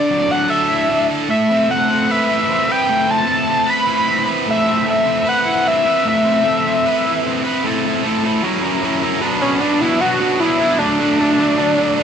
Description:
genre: rock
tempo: 152 BPM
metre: 4/4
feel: straight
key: unclear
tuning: A4 = 440 Hz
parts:
  - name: overdriven synth lead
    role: melody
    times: 0.0-12.0 s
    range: C#4 to B5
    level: -16 LUFS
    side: equal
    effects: distortion, slapback echo
  - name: cranked stack guitar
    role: riff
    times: 0.0-12.0 s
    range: B2 to B4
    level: -17 LUFS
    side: equal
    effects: overdrive
room: light reverb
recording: none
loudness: -14 LUFS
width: side -8 dB against mid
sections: 0.0-7.6 A section; 7.6-9.2 B section; 9.2-12.0 C section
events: none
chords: 0.0 Dadd9; 1.3 Amadd9; 7.6 Am; 8.4 F#7; 9.2 Bm; 10.8 D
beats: 0.11 0.51 0.91 | 1.30 1.70 2.10 2.49 | 2.89 3.28 3.68 4.08 | 4.47 4.87 5.26 5.66 | 6.05 6.45 6.84 7.24 | 7.64 8.03 8.43 8.82 | 9.22 9.61 10.01 10.40 | 10.80 11.20 11.59 11.99

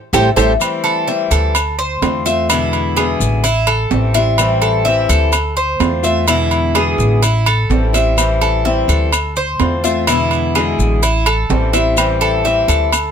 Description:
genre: latin, Cuban son and guajira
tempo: 127 BPM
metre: 4/4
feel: straight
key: A minor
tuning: A4 = 440 Hz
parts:
  - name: picked acoustic archtop guitar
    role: accompaniment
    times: 0.1-13.0 s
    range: B2 to F4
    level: -18 LUFS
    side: left 7 dB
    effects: none
  - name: Cuban tres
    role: arpeggios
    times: 0.1-13.1 s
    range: E4 to E5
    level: -18 LUFS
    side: right 3 dB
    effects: none
  - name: upright bass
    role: bass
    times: 0.1-13.1 s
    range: A1 to E2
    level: -17 LUFS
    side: equal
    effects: none
  - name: claves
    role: percussion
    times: 0.1-13.1 s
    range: none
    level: -24 LUFS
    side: left 9 dB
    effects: none
  - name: maracas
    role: percussion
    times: 0.1-13.1 s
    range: none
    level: -25 LUFS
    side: left 8 dB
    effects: none
  - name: timbales and agogo bells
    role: percussion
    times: 0.1-13.1 s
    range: none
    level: -20 LUFS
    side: right 5 dB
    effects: none
room: light reverb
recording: close, detailed microphones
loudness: -12 LUFS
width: side -8 dB against mid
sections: 0.6-13.1 A section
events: band accent 0.0-0.6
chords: 0.0 Am7; 1.6 Dm9; 2.5 E7; 3.4 Am7; 5.3 Dm9; 6.3 E7; 7.2 Am7; 9.1 Dm9; 10.1 E7; 11.0 Am7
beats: 0.14 | 0.61 1.08 1.55 2.03 | 2.50 2.97 3.44 3.92 | 4.39 4.86 5.33 5.81 | 6.28 6.75 7.23 7.70 | 8.18 8.65 9.13 9.60 | 10.08 10.55 11.03 11.50 | 11.97 12.45 12.92

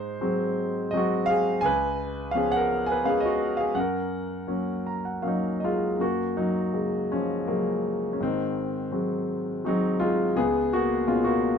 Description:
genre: classical, lyrical solo piano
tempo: 83 BPM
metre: 3/4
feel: rubato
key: F# major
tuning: A4 = 440 Hz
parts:
  - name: warm concert grand piano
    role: solo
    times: 0.0-11.6 s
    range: C#2 to A#5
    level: -24 LUFS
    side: equal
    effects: none
room: moderate small room reverb, RT60 0.5 s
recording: dark, warm production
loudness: -24 LUFS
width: side -7 dB against mid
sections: 0.0-6.0 A section; 6.0-11.6 A section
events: grand piano fill 4.5-6.0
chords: 0.0 G#7; 1.6 C#7; 3.8 F#; 8.2 G#7; 10.4 C#7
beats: 0.21 0.93 | 1.63 2.34 3.05 | 3.76 4.49 5.24 | 5.98 6.73 7.47 | 8.20 8.93 9.65 | 10.37 11.09

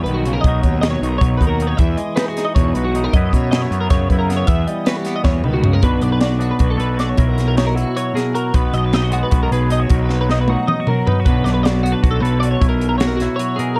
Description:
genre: math rock and midwest emo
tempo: 310 BPM (eighths)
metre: 7/8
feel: straight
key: B major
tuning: A4 = 441 Hz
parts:
  - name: twangy electric guitar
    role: accompaniment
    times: 0.0-13.8 s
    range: F#2 to B4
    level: -23 LUFS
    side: equal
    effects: spring reverb
  - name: twelve-string electric guitar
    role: arpeggios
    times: 0.0-13.8 s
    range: F#4 to E5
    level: -26 LUFS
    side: equal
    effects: analog chorus
  - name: fuzz picked electric bass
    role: bass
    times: 0.1-13.3 s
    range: B1 to B2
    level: -22 LUFS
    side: equal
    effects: overdrive
  - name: crisp fusion drum kit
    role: drums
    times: 0.1-13.7 s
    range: hi-hat, kick drum, snare drum, toms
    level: -20 LUFS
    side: equal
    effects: none
room: little or no reverb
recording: dark, warm production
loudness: -17 LUFS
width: mono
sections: 0.0-5.8 A section; 5.8-13.8 B section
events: drum fill 5.2-5.8, 10.1-11.3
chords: 0.4 Bmaj9; 1.8 Emaj9; 3.1 F#7sus4; 4.5 Emadd9; 5.8 Bm7; 7.2 F#7/B; 8.5 G#m7/B; 9.9 Bmaj7; 11.3 Bm7; 12.6 F#7/B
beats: 0.04 0.24 | 0.43 0.62 0.81 1.01 1.20 1.39 1.58 | 1.78 1.97 2.16 2.35 2.55 2.74 2.93 | 3.13 3.32 3.51 3.71 3.90 4.09 4.28 | 4.48 4.67 4.86 5.06 5.25 5.44 5.64 | 5.83 6.02 6.22 6.41 6.60 6.80 6.99 | 7.18 7.38 7.57 7.76 7.96 8.15 8.35 | 8.54 8.73 8.93 9.12 9.31 9.51 9.70 | 9.90 10.09 10.28 10.48 10.67 10.86 11.06 | 11.25 11.45 11.64 11.83 12.03 12.22 12.41 | 12.61 12.80 12.99 13.19 13.38 13.57 13.77

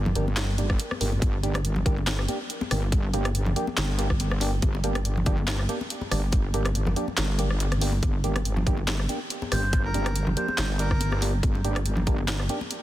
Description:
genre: deep dubstep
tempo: 141 BPM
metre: 4/4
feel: swing 55% on 16ths, half-time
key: G minor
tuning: A4 = 440 Hz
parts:
  - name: wobble bass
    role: bass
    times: 0.0-12.5 s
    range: G1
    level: -26 LUFS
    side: equal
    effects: chorus
  - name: congas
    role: percussion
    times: 0.1-12.7 s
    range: none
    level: -34 LUFS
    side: left 2 dB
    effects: dub echo
  - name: percussive organ stab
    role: stabs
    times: 0.2-12.6 s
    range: Bb3 to G4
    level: -33 LUFS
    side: right 2 dB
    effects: analog chorus, dub echo
  - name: garage drum kit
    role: drums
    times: 0.2-12.8 s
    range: handclaps, hi-hat, rim click, snare drum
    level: -31 LUFS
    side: equal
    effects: soft clipping on snare
  - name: electronic kick drum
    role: drums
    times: 0.7-12.2 s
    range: none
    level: -24 LUFS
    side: equal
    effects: none
  - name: melodica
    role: melody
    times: 9.5-11.2 s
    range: Bb4 to C5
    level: -33 LUFS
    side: right 1 dB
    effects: dub echo
room: digital ambience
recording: dense, heavily limited modern master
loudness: -23 LUFS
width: side -14 dB against mid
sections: 0.0-12.8 A section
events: kick drops out 7.2-8.0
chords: 0.0 Gm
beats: 0.37 0.79 | 1.22 1.65 2.07 2.50 | 2.92 3.35 3.77 4.20 | 4.62 5.05 5.47 5.90 | 6.33 6.75 7.18 7.60 | 8.03 8.45 8.88 9.30 | 9.73 10.16 10.58 11.01 | 11.43 11.86 12.28 12.71

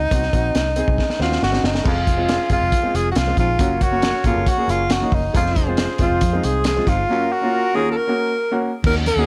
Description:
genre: uptempo 1960s-style soul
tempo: 138 BPM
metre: 4/4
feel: straight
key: unclear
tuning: A4 = 440 Hz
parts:
  - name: breathy tenor saxophone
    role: melody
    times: 0.0-9.3 s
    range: Eb4 to Bb4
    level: -23 LUFS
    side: equal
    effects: tape echo
  - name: vintage muted fingered electric bass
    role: bass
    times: 0.0-9.2 s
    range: F1 to F2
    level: -26 LUFS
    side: equal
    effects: none
  - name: warm upright piano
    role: accompaniment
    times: 0.1-9.3 s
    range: Ab3 to Ab4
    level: -27 LUFS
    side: equal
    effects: none
  - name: crunchy breakbeat drum kit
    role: drums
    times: 0.1-9.2 s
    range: crash cymbal, hi-hat, kick drum, snare drum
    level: -23 LUFS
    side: equal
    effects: none
  - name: dark horn section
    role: second line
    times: 1.9-8.6 s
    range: C4 to Db5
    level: -32 LUFS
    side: equal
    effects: none
  - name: growling baritone saxophone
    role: riff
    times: 1.9-9.0 s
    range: Eb2 to Ab2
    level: -31 LUFS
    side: equal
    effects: none
  - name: congas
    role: percussion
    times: 2.1-9.2 s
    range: none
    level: -36 LUFS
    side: equal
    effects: none
room: light reverb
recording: dark, warm production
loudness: -19 LUFS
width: mono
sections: 0.0-1.9 A section; 1.9-8.8 B section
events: drum fill 1.0-1.9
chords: 0.0 Cdim; 1.9 Fm; 3.6 Gb; 5.3 Fm; 7.1 Gb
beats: | 0.11 0.55 0.98 1.42 | 1.86 2.29 2.73 3.17 | 3.60 4.04 4.48 4.91 | 5.35 5.79 6.22 6.66 | 7.09 7.53 7.96 8.40 | 8.84

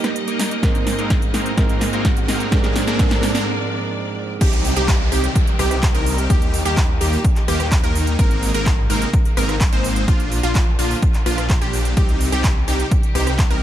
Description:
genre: EDM, festival progressive house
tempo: 127 BPM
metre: 4/4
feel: straight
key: unclear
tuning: A4 = 439 Hz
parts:
  - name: dark baby grand piano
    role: accompaniment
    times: 0.0-4.4 s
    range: Ab2 to Bb4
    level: -26 LUFS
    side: right 4 dB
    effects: vintage 12-bit sampler grit, sidechain pumping, dub echo
  - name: clear studio string section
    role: sustained chords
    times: 0.0-13.6 s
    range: Bb2 to Eb5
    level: -31 LUFS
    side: left 1 dB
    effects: vintage 12-bit sampler grit, sidechain pumping
  - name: supersaw chords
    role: riff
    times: 0.0-13.6 s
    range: Ab3 to C5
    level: -24 LUFS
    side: equal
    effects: vintage 12-bit sampler grit, sidechain pumping, low-pass filter, dub echo
  - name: big-room dance drum kit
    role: drums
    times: 0.0-13.6 s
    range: crash cymbal, handclaps, hi-hat, rim click, snare drum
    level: -26 LUFS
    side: equal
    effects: overdrive
  - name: riser and downlifter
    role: sound effects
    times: 0.2-8.2 s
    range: none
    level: -30 LUFS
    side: right 1 dB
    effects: none
  - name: electronic kick drum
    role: drums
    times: 0.6-13.5 s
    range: none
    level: -18 LUFS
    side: equal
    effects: overdrive
  - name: wide unison pluck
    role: arpeggios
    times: 4.4-13.6 s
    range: F4 to C5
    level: -26 LUFS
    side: equal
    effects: auto-pan, sidechain pumping, dub echo
  - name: wide detuned saw bass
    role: bass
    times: 4.4-13.6 s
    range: Ab1 to Eb2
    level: -22 LUFS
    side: equal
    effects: chorus, tube saturation, sidechain pumping
room: little or no reverb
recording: none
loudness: -16 LUFS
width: side -12 dB against mid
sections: 0.0-4.4 A section; 4.4-13.6 B section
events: build-up 0.0-4.4; drum fill 0.0-3.5; riser 0.2-3.5; break 3.5-4.4; drop 4.4-13.6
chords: 0.0 Eb; 0.6 Abadd9; 2.5 Bb; 4.4 Cm; 6.3 Eb; 8.2 Abadd9; 10.1 Bb; 12.0 Cm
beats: 0.16 | 0.63 1.10 1.58 2.05 | 2.52 2.99 3.46 3.94 | 4.41 4.88 5.36 5.83 | 6.30 6.77 7.25 7.72 | 8.19 8.66 9.13 9.61 | 10.08 10.55 11.02 11.50 | 11.97 12.44 12.91 13.39

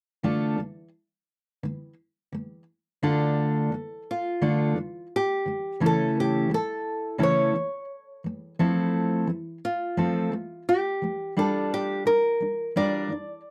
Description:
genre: pop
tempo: 86 BPM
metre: 4/4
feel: swing 60% on 16ths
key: D minor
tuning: A4 = 441 Hz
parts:
  - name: fingerpicked steel-string acoustic guitar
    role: accompaniment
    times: 0.2-13.4 s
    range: C#3 to Bb4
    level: -27 LUFS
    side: equal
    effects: none
  - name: nylon-string guitar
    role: melody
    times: 4.1-13.5 s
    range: F4 to D5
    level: -28 LUFS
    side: equal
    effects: none
room: light reverb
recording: dry, close 1970s-style studio recording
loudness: -26 LUFS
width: mono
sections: 0.2-3.0 A section; 3.0-13.5 B section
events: none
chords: 0.2 Dm; 5.8 A/C#; 8.2 Fmaj7; 11.4 Gm7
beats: | 0.24 0.94 1.63 2.33 | 3.03 3.73 4.42 5.12 | 5.82 6.51 7.21 7.90 | 8.60 9.29 9.99 10.68 | 11.38 12.07 12.77 13.46

